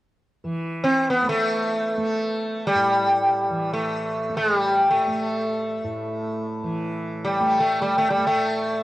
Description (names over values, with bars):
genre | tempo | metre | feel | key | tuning
indian classical | free time | none | none | unclear | A4 = 440 Hz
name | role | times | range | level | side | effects
tanpura | drone | 0.4-8.8 s | A2 to A3 | -30 LUFS | right 1 dB | none
sitar | melody | 0.8-8.8 s | G3 to C4 | -20 LUFS | equal | cassette tape
room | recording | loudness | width
moderate booth ambience, RT60 0.2 s | home recording on cassette | -20 LUFS | side -16 dB against mid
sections
0.4-8.8 A section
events
none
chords
none